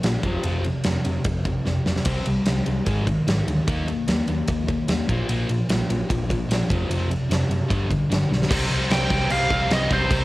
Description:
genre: hard rock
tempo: 149 BPM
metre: 4/4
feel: straight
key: unclear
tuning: A4 = 440 Hz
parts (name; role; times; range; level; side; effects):
- distorted electric guitar; riff; 0.0-10.2 s; F2 to Eb4; -26 LUFS; left 2 dB; distortion, cassette tape
- sludgy distorted guitar; riff; 0.0-8.5 s; F2 to Eb4; -32 LUFS; right 4 dB; overdrive, cassette tape
- hollow-body short-scale picked electric bass; bass; 0.0-10.2 s; F1 to Eb2; -26 LUFS; equal; none
- huge arena drum kit; drums; 0.0-10.2 s; crash cymbal, kick drum, ride cymbal, snare drum; -24 LUFS; equal; cassette tape
- scooped high-gain guitar; riff; 8.5-10.2 s; C3 to Eb4; -27 LUFS; right 2 dB; distortion, cassette tape
- biting lead guitar; melody; 8.9-10.2 s; C5 to G5; -23 LUFS; right 2 dB; overdrive, cassette tape
room: light reverb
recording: home recording on cassette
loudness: -20 LUFS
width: side -18 dB against mid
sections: 0.0-8.5 A section; 8.5-10.2 B section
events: drum fill 1.7-2.1, 8.3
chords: 0.2 F5; 2.1 C5; 2.9 Ab5; 3.7 Eb5; 5.1 Bb5; 6.7 F5; 7.7 G; 8.5 Cm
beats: 0.03 | 0.43 0.84 1.25 1.65 | 2.06 2.46 2.87 3.27 | 3.67 4.08 4.48 4.88 | 5.29 5.69 6.09 6.49 | 6.89 7.29 7.70 8.10 | 8.50 8.90 9.30 9.70 | 10.10

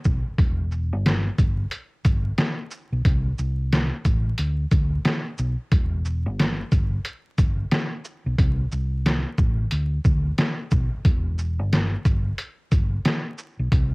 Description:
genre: hip hop, boom-bap hip-hop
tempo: 90 BPM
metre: 4/4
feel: swing 61% on 16ths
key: E minor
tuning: A4 = 441 Hz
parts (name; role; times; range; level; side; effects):
- trip hop sampler-style drum kit; drums; 0.0-13.9 s; hi-hat, kick drum, shaker, snare drum; -21 LUFS; equal; overdrive, cassette tape
- hollow-body short-scale fingered electric bass; bass; 0.1-13.9 s; E1 to D2; -24 LUFS; equal; transformer saturation
room: little or no reverb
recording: home recording on cassette, vinyl crackle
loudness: -21 LUFS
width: side -30 dB against mid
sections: 0.4-13.9 A section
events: none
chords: none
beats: | 0.38 1.05 1.72 2.38 | 3.05 3.72 4.38 5.05 | 5.72 6.38 7.05 7.72 | 8.38 9.05 9.72 10.38 | 11.05 11.72 12.38 13.05 | 13.72

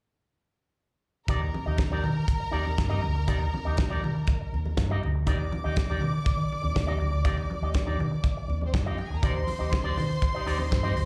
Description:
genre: disco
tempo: 121 BPM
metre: 4/4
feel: straight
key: Eb major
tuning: A4 = 437 Hz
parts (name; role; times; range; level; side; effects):
- rich studio violin section; second line; 1.3-11.1 s; C4 to D6; -37 LUFS; equal; slapback echo
- electric guitar with an envelope filter; accompaniment; 1.3-11.0 s; Eb4 to Eb5; -37 LUFS; equal; slapback echo
- overdriven fingered electric bass; bass; 1.3-11.1 s; D2 to Eb3; -31 LUFS; equal; none
- damped 70s drum kit; drums; 1.3-11.1 s; hi-hat, kick drum, snare drum; -28 LUFS; equal; none
- congas; percussion; 1.3-11.1 s; none; -40 LUFS; equal; slapback echo
room: studio ambience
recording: live gig heard through the venue's PA, club reverb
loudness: -28 LUFS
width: mono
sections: 1.3-11.1 A section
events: none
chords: 1.3 Ebmaj7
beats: | 1.28 1.78 2.28 2.78 | 3.28 3.77 4.27 4.77 | 5.27 5.76 6.26 6.76 | 7.25 7.75 8.24 8.74 | 9.23 9.73 10.22 10.72

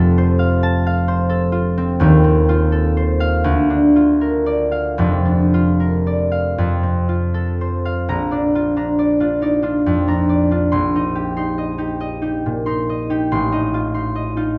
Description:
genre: classical, solo harp piece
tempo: 37-48 BPM (dotted quarters)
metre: 6/8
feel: rubato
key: Bb major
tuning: A4 = 440 Hz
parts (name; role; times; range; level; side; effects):
- concert harp; solo; 0.0-14.6 s; Eb1 to C6; -18 LUFS; equal; none
room: wet recital hall reverb, RT60 1.5 s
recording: none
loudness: -18 LUFS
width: mono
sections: 0.0-8.1 A section; 8.1-14.6 B section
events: none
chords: 0.0 F; 2.0 F7/Eb; 3.4 Bb/D; 5.0 Bb/F; 6.6 F; 8.1 Bb; 10.7 Cm7/Bb; 13.3 F7/A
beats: 0.61 | 1.98 3.45 | 4.98 6.55 | 8.07 9.40 | 10.72 12.02 | 13.34

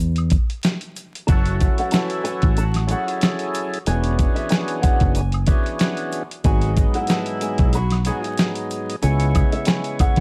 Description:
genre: hip hop, boom-bap hip-hop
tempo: 93 BPM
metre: 4/4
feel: swing 55% on 16ths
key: F# minor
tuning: A4 = 439 Hz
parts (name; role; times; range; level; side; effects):
- fingered electric bass; bass; 0.0-10.2 s; E1 to E2; -22 LUFS; equal; none
- egg shaker and woodblock; percussion; 0.0-10.2 s; none; -40 LUFS; equal; none
- dusty soul sampler-style drum kit; drums; 0.2-10.2 s; hi-hat, kick drum, snare drum; -22 LUFS; equal; none
- flamenco guitar; melody; 1.3-10.2 s; E5 to B5; -31 LUFS; equal; high-pass filter, low-pass filter, digital delay
- percussive tonewheel organ; accompaniment; 1.3-10.2 s; G#2 to C#5; -28 LUFS; equal; overdrive, slow rotary speaker, cassette tape, high-pass filter, low-pass filter
- warm saxophone section; stabs; 1.3-8.3 s; E3 to F#4; -35 LUFS; equal; high-pass filter, low-pass filter, digital delay
room: small room ambience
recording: dark, warm production, vinyl crackle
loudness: -20 LUFS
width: mono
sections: 0.0-1.3 A section; 1.3-10.2 A section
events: break 0.0-1.3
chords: 0.0 N.C.; 1.3 F#m7; 3.9 E13; 6.4 G#m7; 9.0 C#m7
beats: 0.00 0.64 | 1.29 1.93 2.58 3.22 | 3.87 4.51 5.16 5.80 | 6.45 7.09 7.74 8.38 | 9.03 9.67

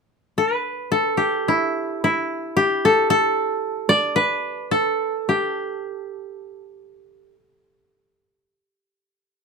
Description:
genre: japanese traditional, Japanese chamber music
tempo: 51-57 BPM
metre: 2/4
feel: rubato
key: A suspended pentatonic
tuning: A4 = 440 Hz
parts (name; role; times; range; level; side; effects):
- koto; solo; 0.4-7.3 s; E4 to D5; -19 LUFS; equal; none
room: light reverb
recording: none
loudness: -19 LUFS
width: side -4 dB against mid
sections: 0.0-9.4 A section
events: none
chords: none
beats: | 0.95 2.06 | 3.14 4.21 | 5.30 6.43

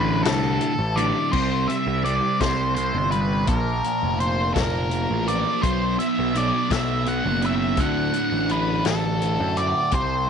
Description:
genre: psychedelic rock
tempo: 56 BPM (dotted quarters)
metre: 6/8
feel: straight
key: D mixolydian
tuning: A4 = 440 Hz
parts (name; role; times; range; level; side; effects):
- octave-fuzz lead guitar; melody; 0.0-10.3 s; A4 to F#5; -25 LUFS; equal; distortion, slapback echo
- fuzz guitar; riff; 0.0-10.3 s; D2 to C4; -25 LUFS; right 1 dB; distortion, phaser
- fuzz picked electric bass; bass; 0.0-10.2 s; F1 to F#2; -26 LUFS; equal; overdrive
- vintage drum kit; drums; 0.3-10.1 s; crash cymbal, hi-hat, kick drum, snare drum; -27 LUFS; left 3 dB; none
room: light reverb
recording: 1960s-style stereo, nothing above 10.8 kHz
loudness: -20 LUFS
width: side -7 dB against mid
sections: 0.0-1.3 A section; 1.3-10.3 B section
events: none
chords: 0.0 D5; 1.3 C5; 3.5 Bb5; 5.6 B5; 7.8 D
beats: 0.26 | 1.33 2.40 | 3.48 4.55 | 5.63 6.70 | 7.78 8.85 | 9.92

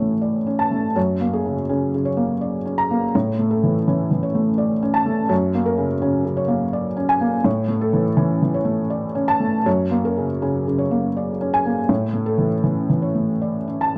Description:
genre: neoclassical minimalist piano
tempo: 82 BPM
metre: 3/4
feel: rubato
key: A major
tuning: A4 = 441 Hz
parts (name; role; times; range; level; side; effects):
- felt-muted upright piano; solo; 0.0-14.0 s; F#2 to A#5; -20 LUFS; equal; none
room: light reverb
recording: dry, close 1970s-style studio recording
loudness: -21 LUFS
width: mono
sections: 0.0-14.0 A section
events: none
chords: 0.0 A; 1.0 F#add9; 3.1 A; 5.3 F#add9; 7.5 A; 9.7 F#add9; 11.9 A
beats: 0.23 | 0.96 1.69 2.41 | 3.14 3.87 4.59 | 5.30 6.02 6.73 | 7.45 8.18 8.91 | 9.66 10.41 11.15 | 11.89 12.63 13.40

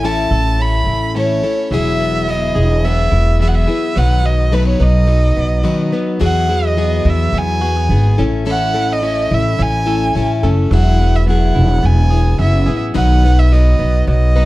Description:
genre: acoustic pop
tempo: 107 BPM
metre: 4/4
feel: straight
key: E major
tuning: A4 = 439 Hz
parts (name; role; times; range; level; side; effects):
- warm violin; melody; 0.0-14.5 s; B4 to B5; -19 LUFS; right 2 dB; plate reverb
- picked plugged-in steel-string acoustic guitar; accompaniment; 0.0-14.5 s; A2 to B4; -20 LUFS; left 4 dB; plate reverb
- direct-recorded clean electric guitar; arpeggios; 0.0-14.5 s; F#3 to A4; -26 LUFS; right 4 dB; plate reverb
- upright bass; bass; 0.0-14.5 s; E1 to E2; -14 LUFS; equal; none
room: little or no reverb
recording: dark, warm production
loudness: -12 LUFS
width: side -18 dB against mid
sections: 0.0-6.2 A section; 6.2-14.5 B section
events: break 5.6-6.2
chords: 0.0 A; 1.7 Eadd9; 4.0 B; 6.2 Eadd9; 8.2 A; 10.7 Eadd9; 13.0 B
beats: 0.03 0.59 1.15 | 1.71 2.27 2.84 3.40 | 3.96 4.52 5.09 5.65 | 6.21 6.77 7.34 7.90 | 8.46 9.02 9.59 10.15 | 10.71 11.27 11.84 12.40 | 12.96 13.52 14.08

